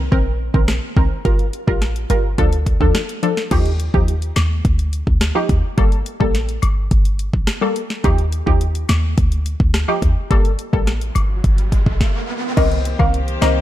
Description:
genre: dancehall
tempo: 106 BPM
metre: 4/4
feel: straight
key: unclear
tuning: A4 = 444 Hz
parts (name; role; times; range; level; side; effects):
- punchy chord stab; accompaniment; 0.0-13.6 s; Eb3 to Bb4; -22 LUFS; equal; chorus
- short 808-style bass; bass; 0.0-13.6 s; G1 to Eb2; -18 LUFS; equal; none
- afro-pop drum kit; drums; 0.1-13.6 s; crash cymbal, hi-hat, kick drum, rim click, snare drum; -19 LUFS; equal; none
- woodblock and cabasa; percussion; 3.5-13.6 s; none; -30 LUFS; left 8 dB; none
- riser; sound effects; 11.2-12.6 s; none; -28 LUFS; right 2 dB; none
- buzzing marimba with medium hard mallets; melody; 12.6-13.5 s; Eb5 to F5; -22 LUFS; left 3 dB; tape echo
- rich chamber string section; sustained chords; 12.6-13.6 s; Eb3 to C5; -27 LUFS; left 2 dB; sidechain pumping
room: little or no reverb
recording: dark, warm production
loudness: -15 LUFS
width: side -13 dB against mid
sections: 0.0-3.5 A section; 3.5-12.6 B section; 12.6-13.6 C section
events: riser 11.2-12.6; stop 12.0-12.6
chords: 0.0 Cm7; 1.3 Gm7; 2.4 Dm; 3.5 Ebadd9; 5.8 Gmadd9; 8.0 Ebadd9; 10.3 Gmadd9; 12.6 Cm7

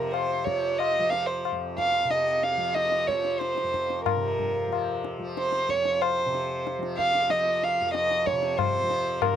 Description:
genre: indian classical, Hindustani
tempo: 92 BPM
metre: 4/4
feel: straight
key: unclear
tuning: A4 = 441 Hz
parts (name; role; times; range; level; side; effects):
- dark violin; melody; 0.0-9.4 s; Bb4 to F5; -25 LUFS; right 2 dB; none
- tanpura; drone; 0.0-9.4 s; F2 to F3; -33 LUFS; left 2 dB; none
- tabla; percussion; 0.1-9.4 s; none; -30 LUFS; left 11 dB; none
room: light reverb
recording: dry, close 1970s-style studio recording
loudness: -24 LUFS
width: side -9 dB against mid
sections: 0.0-9.4 A section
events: speeding up 0.0-9.4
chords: none

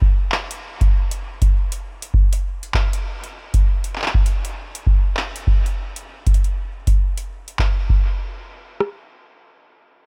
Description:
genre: IDM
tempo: 99 BPM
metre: 4/4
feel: swing 62% on 16ths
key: none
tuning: none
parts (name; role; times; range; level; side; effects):
- booming analog drum machine; drums; 0.0-9.0 s; kick drum, rim click; -20 LUFS; equal; none
- booming analog drum machine; drums; 0.3-7.7 s; handclaps, hi-hat; -30 LUFS; equal; analog delay
room: digital ambience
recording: none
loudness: -21 LUFS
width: mono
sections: 0.0-7.9 A section; 7.9-10.1 B section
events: none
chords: none

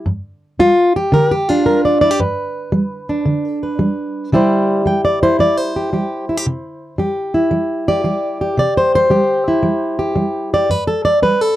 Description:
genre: acoustic country blues, solo or duo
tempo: 113 BPM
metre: 4/4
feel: swing 68% on 8ths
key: unclear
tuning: A4 = 441 Hz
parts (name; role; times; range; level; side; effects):
- fingerpicked plugged-in steel-string acoustic guitar; solo; 0.0-11.6 s; G2 to G5; -14 LUFS; equal; none
room: light reverb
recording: dry, close 1970s-style studio recording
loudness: -14 LUFS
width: side -14 dB against mid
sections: 0.0-11.6 A section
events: none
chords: 0.1 G; 4.3 C; 10.7 G5

